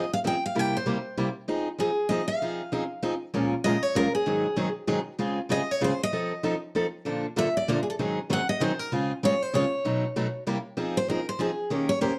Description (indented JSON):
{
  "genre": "jazz",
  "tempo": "194 BPM",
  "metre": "3/4",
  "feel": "swing 59% on 8ths",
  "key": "F minor, Bb minor from 3.3 s",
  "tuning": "A4 = 440 Hz",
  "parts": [
    { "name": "picked steel-string acoustic guitar", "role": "melody", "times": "0.0-12.2 s", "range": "Ab4 to G5", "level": "-30 LUFS", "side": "equal", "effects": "none" },
    { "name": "picked steel-string acoustic guitar", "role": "accompaniment", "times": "0.0-12.1 s", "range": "Ab2 to Bb4", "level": "-30 LUFS", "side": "equal", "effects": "none" }
  ],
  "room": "moderate studio reverb, RT60 0.6 s",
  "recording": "dark, warm production",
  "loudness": "-27 LUFS",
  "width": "mono",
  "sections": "0.0-3.3 A section; 3.3-10.8 B section; 10.8-12.2 C section",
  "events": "steel-string acoustic guitar solo 10.8-12.2",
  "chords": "0.0 Fm7; 0.5 C7; 1.5 Fm7; 3.3 Bbm7; 4.3 Ab7; 5.2 Dbmaj7; 6.1 F7; 7.0 Bbmaj7; 8.0 Ab7; 8.9 Dbmaj7; 9.8 B9; 10.5 C7; 10.8 Fm7"
}